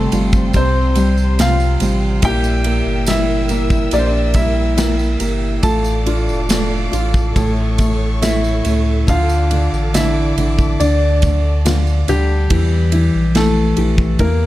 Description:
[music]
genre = pop ballad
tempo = 70 BPM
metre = 4/4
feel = straight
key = D minor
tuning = A4 = 438 Hz
[part]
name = warm grand piano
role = melody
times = 0.0-14.5 s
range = G3 to A5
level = -20 LUFS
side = equal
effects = none
[part]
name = felt-muted upright piano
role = accompaniment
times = 0.0-14.5 s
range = C3 to F4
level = -21 LUFS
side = right 2 dB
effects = none
[part]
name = warm studio string section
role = sustained chords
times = 0.0-12.5 s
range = F3 to E6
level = -29 LUFS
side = left 1 dB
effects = none
[part]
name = nylon-string guitar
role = arpeggios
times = 0.0-14.5 s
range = A2 to G4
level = -24 LUFS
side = left 5 dB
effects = none
[part]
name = warm sub bass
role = bass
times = 0.0-14.5 s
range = F1 to E2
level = -17 LUFS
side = equal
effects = none
[part]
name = modern studio drum kit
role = drums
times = 0.1-14.4 s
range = kick drum, ride cymbal, snare drum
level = -21 LUFS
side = equal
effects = none
[part]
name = tambourine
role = percussion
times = 0.1-12.3 s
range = none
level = -32 LUFS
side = right 6 dB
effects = none
[sound]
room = small room ambience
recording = dark, warm production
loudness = -13 LUFS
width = side -15 dB against mid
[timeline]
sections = 0.0-14.5 A section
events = none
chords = 0.0 Csus4; 2.2 Edim; 5.6 Dm; 7.4 A; 9.1 Dm; 12.5 Edim

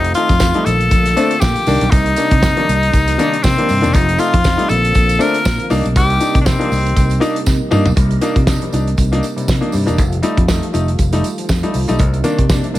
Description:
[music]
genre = disco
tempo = 119 BPM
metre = 4/4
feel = swing 56% on 16ths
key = C dorian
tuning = A4 = 441 Hz
[part]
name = edgy tenor saxophone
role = melody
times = 0.0-7.2 s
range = C4 to Bb4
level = -17 LUFS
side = left 2 dB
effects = none
[part]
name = clear baby grand piano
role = accompaniment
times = 0.0-12.8 s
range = C3 to Eb4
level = -19 LUFS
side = left 2 dB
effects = none
[part]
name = percussive tonewheel organ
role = sustained chords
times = 0.0-12.8 s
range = C3 to F4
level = -24 LUFS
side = right 2 dB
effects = overdrive, chorus vibrato, fast rotary speaker
[part]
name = fingered electric bass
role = bass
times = 0.0-12.8 s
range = E1 to C3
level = -17 LUFS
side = equal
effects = none
[part]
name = warm soul drum kit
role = drums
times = 0.0-12.8 s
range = hi-hat, kick drum, snare drum, toms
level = -17 LUFS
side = equal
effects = none
[part]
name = tambourine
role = percussion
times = 0.1-12.8 s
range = none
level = -32 LUFS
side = right 9 dB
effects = none
[sound]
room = studio ambience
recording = none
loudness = -12 LUFS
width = side -15 dB against mid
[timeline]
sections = 0.0-8.0 A section; 8.0-12.8 B section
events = drum fill 7.5-8.0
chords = 0.0 F7; 0.7 Bbmaj7; 1.7 Cm7; 3.9 F7; 4.7 Bbmaj7; 5.7 Cm7; 10.0 F9; 12.0 Cm7

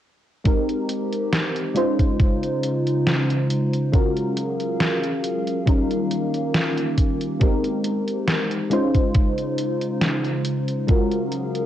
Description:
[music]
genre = vaporwave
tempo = 69 BPM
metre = 4/4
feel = swing 54% on 16ths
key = Ab major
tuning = A4 = 436 Hz
[part]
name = mellow FM electric piano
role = accompaniment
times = 0.4-11.7 s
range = G3 to C5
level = -23 LUFS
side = left 1 dB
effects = analog chorus, analog delay
[part]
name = warbly tape-like pad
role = sustained chords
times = 0.9-11.7 s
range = Db3 to F5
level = -26 LUFS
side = right 1 dB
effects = chorus, built-in reverb
[part]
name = detuned 8-bit digital drum machine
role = drums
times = 0.5-11.7 s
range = hi-hat, snare drum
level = -25 LUFS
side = equal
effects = gated reverb
[part]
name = electronic kick drum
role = drums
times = 0.5-11.1 s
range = none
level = -19 LUFS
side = equal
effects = none
[sound]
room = light reverb, digital ambience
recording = cassette tape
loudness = -19 LUFS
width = side -11 dB against mid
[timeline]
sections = 0.5-11.7 A section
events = none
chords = 0.5 Abmaj9; 1.8 Dbmaj7; 3.9 Gbmaj7; 5.7 Eb7; 7.4 Abmaj9; 8.7 Dbmaj7; 10.9 Gbmaj7

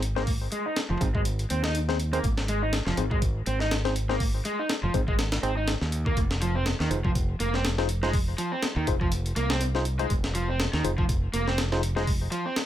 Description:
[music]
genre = breakbeat, breaks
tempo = 122 BPM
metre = 4/4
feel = swing 56% on 16ths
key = F minor pentatonic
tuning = A4 = 439 Hz
[part]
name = modern bright fingered electric bass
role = bass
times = 0.0-12.3 s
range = F1 to Eb2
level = -28 LUFS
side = equal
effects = none
[part]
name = breakbeat sampler-style drum kit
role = drums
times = 0.0-12.7 s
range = hi-hat, kick drum, snare drum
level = -29 LUFS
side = equal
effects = studio ambience
[part]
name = raw garage guitar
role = riff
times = 0.2-12.6 s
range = Eb3 to Eb4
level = -30 LUFS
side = right 1 dB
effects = overdrive, low-pass filter, ping-pong delay
[part]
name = tine electric piano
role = stabs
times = 0.2-12.0 s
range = C4 to C5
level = -32 LUFS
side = left 3 dB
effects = medium stereo tremolo, ping-pong delay
[sound]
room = little or no reverb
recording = none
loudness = -24 LUFS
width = side -12 dB against mid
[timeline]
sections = 0.0-12.7 A section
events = none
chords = 0.0 Fm7

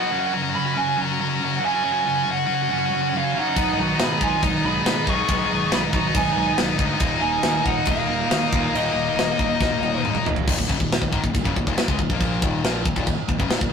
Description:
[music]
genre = heavy metal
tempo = 139 BPM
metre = 4/4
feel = straight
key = Eb minor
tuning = A4 = 440 Hz
[part]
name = bluesy overdriven lead guitar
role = melody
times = 0.0-10.0 s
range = Eb5 to Db6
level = -24 LUFS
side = right 2 dB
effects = distortion
[part]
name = high-gain distorted guitar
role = riff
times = 0.0-13.7 s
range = Eb2 to F#4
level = -24 LUFS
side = left 5 dB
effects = distortion
[part]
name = high-gain distorted guitar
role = riff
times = 0.0-10.5 s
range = Eb2 to B3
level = -28 LUFS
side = right 3 dB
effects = distortion
[part]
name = high-gain lead guitar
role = second line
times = 2.7-10.0 s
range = Bb3 to Ab4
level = -29 LUFS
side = right 1 dB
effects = distortion
[part]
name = growling fingered electric bass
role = bass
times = 3.6-13.7 s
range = Eb1 to Cb3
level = -29 LUFS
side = equal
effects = overdrive
[part]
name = tight metal drum kit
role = drums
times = 3.6-13.7 s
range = china cymbal, crash cymbal, kick drum, snare drum, toms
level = -23 LUFS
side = equal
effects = none
[sound]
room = moderate stone room reverb, RT60 1.0 s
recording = rough rehearsal-room recording, tube saturation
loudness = -19 LUFS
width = side -6 dB against mid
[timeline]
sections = 0.0-10.5 A section; 10.5-13.7 B section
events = drum fill 9.6-10.5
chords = 0.1 Gb5; 3.6 Abm/Cb; 7.0 Eb5; 10.5 Ebm

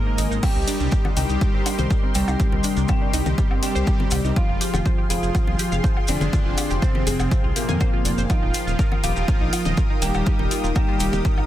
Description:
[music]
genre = melodic techno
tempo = 122 BPM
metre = 4/4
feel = straight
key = C minor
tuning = A4 = 440 Hz
[part]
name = soft supersaw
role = melody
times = 0.0-11.4 s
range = Bb2 to Bb4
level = -27 LUFS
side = equal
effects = sidechain pumping, digital delay
[part]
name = dark detuned synth bell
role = second line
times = 0.0-11.4 s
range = Bb4 to Bb5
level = -34 LUFS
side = equal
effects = chorus, phaser, sidechain pumping, tape echo
[part]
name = lush unison pad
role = sustained chords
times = 0.0-11.5 s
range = Ab4 to Eb6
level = -32 LUFS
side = equal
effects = chorus, phaser, sidechain pumping
[part]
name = analog pluck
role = arpeggios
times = 0.0-11.4 s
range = Eb3 to Ab5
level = -31 LUFS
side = right 1 dB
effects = chorus, phaser, sidechain pumping, tape echo
[part]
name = analog synth brass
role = stabs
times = 0.0-11.5 s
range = Ab2 to F4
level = -30 LUFS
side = left 3 dB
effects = chorus, cassette tape, sidechain pumping, tape echo
[part]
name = swelling detuned saw bass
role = bass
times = 0.2-11.5 s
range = Eb1 to F2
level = -25 LUFS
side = equal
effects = sidechain pumping
[part]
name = house drum kit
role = drums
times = 0.2-11.5 s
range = congas, crash cymbal, hi-hat, woodblock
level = -29 LUFS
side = left 4 dB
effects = none
[part]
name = maracas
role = percussion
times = 0.2-11.4 s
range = none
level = -33 LUFS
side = right 1 dB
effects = none
[part]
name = electronic kick drum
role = drums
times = 0.4-11.4 s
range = none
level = -21 LUFS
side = equal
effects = none
[sound]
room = light reverb, digital ambience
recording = dense, heavily limited modern master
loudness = -18 LUFS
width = side -13 dB against mid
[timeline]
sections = 0.0-11.5 A section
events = none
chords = 0.4 Cm7; 4.4 Fmadd9; 8.3 Ebadd9

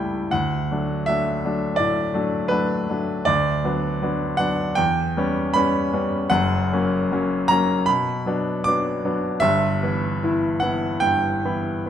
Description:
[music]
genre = classical, romantic character piece for solo piano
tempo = 79 BPM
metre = 4/4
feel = uneven beats, rubato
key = B minor from 3.3 s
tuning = A4 = 441 Hz
[part]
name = clear baby grand piano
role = solo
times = 0.0-11.9 s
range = F#1 to D6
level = -20 LUFS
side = equal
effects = none
[sound]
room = moderate recital hall reverb, RT60 1.6 s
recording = dark, warm production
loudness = -19 LUFS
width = side -9 dB against mid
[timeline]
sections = 0.0-11.9 A section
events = none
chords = 0.3 D; 3.3 Bm/D; 4.8 C#m7b5/E; 6.3 F#; 7.9 Bm; 9.4 Em/G

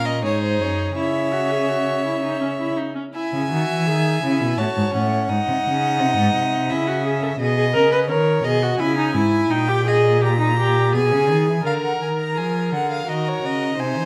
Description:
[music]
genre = classical, baroque-style fugue for string quartet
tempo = 84 BPM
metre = 3/4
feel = straight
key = C# minor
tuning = A4 = 442 Hz
[part]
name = rich violin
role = melody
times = 0.0-14.1 s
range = B#4 to A#5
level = -27 LUFS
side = equal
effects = none
[part]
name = clear violin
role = second line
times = 0.0-7.4, 11.6-14.1 s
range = G#4 to E5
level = -30 LUFS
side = equal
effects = none
[part]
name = clear viola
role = accompaniment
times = 0.0-14.1 s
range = C#4 to B4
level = -24 LUFS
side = equal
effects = none
[part]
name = warm cello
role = bass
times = 0.0-14.1 s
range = F#2 to E#3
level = -25 LUFS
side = equal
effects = none
[sound]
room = moderate recital hall reverb, RT60 1.4 s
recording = close, detailed microphones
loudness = -20 LUFS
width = mono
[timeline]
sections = 0.0-3.1 A section; 3.1-11.6 B section; 11.6-14.1 A section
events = none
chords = 0.2 G#7; 1.0 C#m; 4.6 F#m; 5.3 G#7; 6.7 C#m; 7.4 G#m/B; 8.8 C#m; 9.5 D#/A#; 10.9 G#m/B; 11.6 A#7/D; 13.1 D#m

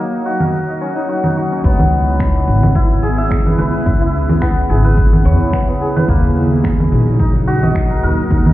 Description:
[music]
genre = organic downtempo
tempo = 108 BPM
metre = 4/4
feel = swing 54% on 16ths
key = C# dorian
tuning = A4 = 444 Hz
[part]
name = ethereal airy pad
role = sustained chords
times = 0.0-8.5 s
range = C#3 to D#5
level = -21 LUFS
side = equal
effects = ensemble chorus, built-in reverb, sidechain pumping
[part]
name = santur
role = arpeggios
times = 0.0-8.5 s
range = A#3 to E5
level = -19 LUFS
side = left 1 dB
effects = digital delay
[part]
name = afro-pop drum kit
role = drums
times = 0.4-8.5 s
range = congas, finger snaps, hi-hat, shaker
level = -18 LUFS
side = right 1 dB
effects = none
[part]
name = upright bass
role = bass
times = 1.6-8.5 s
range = G#1 to E2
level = -15 LUFS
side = equal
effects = tube saturation, sidechain pumping
[part]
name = electronic kick drum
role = drums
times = 1.6-8.4 s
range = none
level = -16 LUFS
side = equal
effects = none
[sound]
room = digital ambience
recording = heard muffled through a wall, stone room reverb, EQ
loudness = -12 LUFS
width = side -15 dB against mid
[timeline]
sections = 0.0-1.6 A section; 1.6-8.5 B section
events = none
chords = 0.0 D#m7; 1.6 C#m7; 6.1 D#m7

